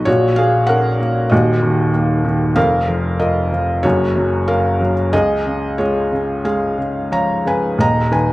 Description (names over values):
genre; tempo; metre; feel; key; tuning
classical, lyrical solo piano; 87-98 BPM; 4/4; rubato; F# major; A4 = 440 Hz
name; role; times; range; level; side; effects
felt-muted upright piano; solo; 0.0-8.3 s; D#1 to A#5; -14 LUFS; equal; none
room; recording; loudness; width
moderate recital hall reverb, RT60 1.5 s; close, detailed microphones; -14 LUFS; side -18 dB against mid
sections
0.0-8.3 A section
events
none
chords
0.1 F#/A#; 1.3 D#m; 2.6 A#5/E#; 3.8 F#; 5.1 C#; 7.8 D#5